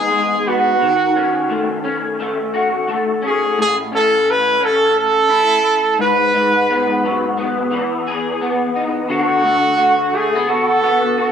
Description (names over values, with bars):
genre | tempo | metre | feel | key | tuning
indie pop | 87 BPM | 4/4 | swing 60% on 16ths | unclear | A4 = 439 Hz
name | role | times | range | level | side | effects
clear trumpet | melody | 0.0-11.3 s | F#4 to B4 | -15 LUFS | right 1 dB | lush chorus, slapback echo, plate reverb
electric guitar through a small old amp | accompaniment | 0.0-11.3 s | G#2 to G#4 | -18 LUFS | left 2 dB | ensemble chorus, warbly pitch drift, plate reverb
room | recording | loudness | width
wet studio ambience, RT60 0.5 s | none | -14 LUFS | side -8 dB against mid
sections
0.0-9.1 A section; 9.1-11.3 B section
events
none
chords
0.0 Emaj7; 0.8 D#m7b5; 3.6 A; 6.0 G#m7; 7.7 Emaj7; 9.1 D6